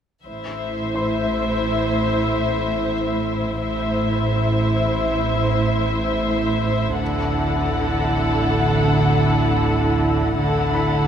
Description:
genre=cinematic, suspense film score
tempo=free time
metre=none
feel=none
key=A dorian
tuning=A4 = 438 Hz
part: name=muted studio violin section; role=melody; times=0.3-11.1 s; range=E5 to F#5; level=-27 LUFS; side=left 5 dB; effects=none
part: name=muted studio violin section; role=second line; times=0.3-11.1 s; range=A4 to C5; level=-26 LUFS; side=left 1 dB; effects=none
part: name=muted studio viola section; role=accompaniment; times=0.3-11.1 s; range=E4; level=-25 LUFS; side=right 1 dB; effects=none
part: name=muted studio cello section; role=bass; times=0.3-11.1 s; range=A2 to D3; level=-25 LUFS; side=right 1 dB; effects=none
part: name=muted studio double bass section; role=bass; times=0.3-11.1 s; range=A1 to D2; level=-26 LUFS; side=right 4 dB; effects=none
part: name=metallic inharmonic drone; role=drone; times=0.8-11.1 s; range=A1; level=-25 LUFS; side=right 1 dB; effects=chorus, built-in reverb
part: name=bright baby grand piano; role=texture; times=0.9-11.1 s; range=C5 to C6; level=-34 LUFS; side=left 2 dB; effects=none
room=wet concert hall reverb, RT60 2.2 s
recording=none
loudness=-18 LUFS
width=side -8 dB against mid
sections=0.3-11.1 A section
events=none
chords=0.3 Am; 7.0 Dadd9/A

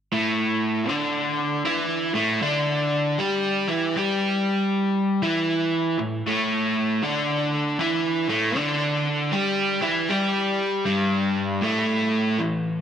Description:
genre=rock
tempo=78 BPM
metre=4/4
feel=swing 64% on 8ths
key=unclear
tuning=A4 = 439 Hz
part: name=crunchy overdriven guitar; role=solo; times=0.1-12.8 s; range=G2 to G4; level=-21 LUFS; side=equal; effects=spring reverb, analog delay
room=moderate studio reverb, RT60 0.6 s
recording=none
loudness=-21 LUFS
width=side -8 dB against mid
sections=0.1-12.4 A section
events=none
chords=0.1 A5

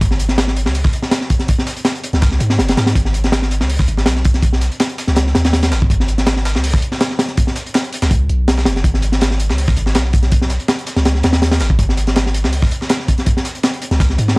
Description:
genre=drum and bass, jungle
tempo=163 BPM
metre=4/4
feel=straight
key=G# minor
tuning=A4 = 439 Hz
part: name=long sustained 808-style bass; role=bass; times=0.0-14.4 s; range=F#1 to G#2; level=-16 LUFS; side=equal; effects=none
part: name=breakbeat sampler-style drum kit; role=drums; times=0.0-14.4 s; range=hi-hat, snare drum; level=-27 LUFS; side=right 1 dB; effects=high-pass filter on hats, high-pass filter on snare
part: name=crunchy breakbeat drum kit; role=drums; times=0.0-14.4 s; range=hi-hat, kick drum, snare drum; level=-15 LUFS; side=equal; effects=none
room=small room reverb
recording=dry, gritty hardware recording, vinyl crackle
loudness=-13 LUFS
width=side -30 dB against mid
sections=0.0-14.4 A section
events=none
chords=none

